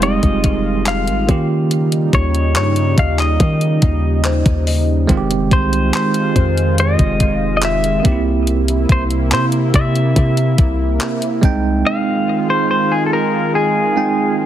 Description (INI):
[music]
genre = contemporary R&B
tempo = 71 BPM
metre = 4/4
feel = straight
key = F minor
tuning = A4 = 439 Hz
[part]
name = clean electric guitar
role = melody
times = 0.0-14.4 s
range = Ab4 to F5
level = -20 LUFS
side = left 2 dB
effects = ping-pong delay
[part]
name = bell-like tine electric piano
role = accompaniment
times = 0.0-14.5 s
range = Eb3 to G5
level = -20 LUFS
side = right 6 dB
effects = fast stereo tremolo
[part]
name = lush unison pad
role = sustained chords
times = 0.0-14.5 s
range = C3 to F4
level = -22 LUFS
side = equal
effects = chorus
[part]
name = warm 808-style bass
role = bass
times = 0.0-11.8 s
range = F1 to Eb3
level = -17 LUFS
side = left 1 dB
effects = none
[part]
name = clean 12-bit digital drum machine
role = drums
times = 0.0-11.6 s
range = handclaps, hi-hat, kick drum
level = -17 LUFS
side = left 1 dB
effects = overdrive
[part]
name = celesta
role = texture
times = 0.0-8.4 s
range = C5 to Bb5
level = -28 LUFS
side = left 5 dB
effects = ping-pong delay
[sound]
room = light reverb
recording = heavily compressed radio sound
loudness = -13 LUFS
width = side -11 dB against mid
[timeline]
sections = 0.0-14.5 A section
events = none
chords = 0.0 Fm7; 1.3 Eb7; 5.1 Fm7; 8.0 C7; 11.4 Fm7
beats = 0.02 0.86 | 1.71 2.56 3.40 4.25 | 5.09 5.94 6.78 7.63 | 8.47 9.32 10.16 11.01 | 11.85 12.70 13.54 14.39